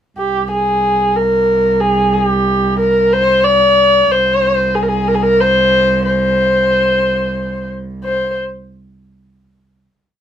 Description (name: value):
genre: Persian modal ensemble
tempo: 61 BPM (dotted quarters)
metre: 6/8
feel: straight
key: C dastgah homayun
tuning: A4 = 440 Hz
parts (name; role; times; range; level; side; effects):
- dark kamancheh; melody; 0.2-8.4 s; G4 to Db5+47c; -12 LUFS; left 1 dB; none
- dark cello; drone; 0.2-8.1 s; C2; -20 LUFS; right 2 dB; none
room: light reverb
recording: close, detailed microphones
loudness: -11 LUFS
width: side -10 dB against mid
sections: 0.2-8.1 A section; 8.1-10.0 final note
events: none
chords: none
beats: | 0.16 1.15 | 2.13 3.12 | 4.11 5.10 | 6.08 7.07 | 8.06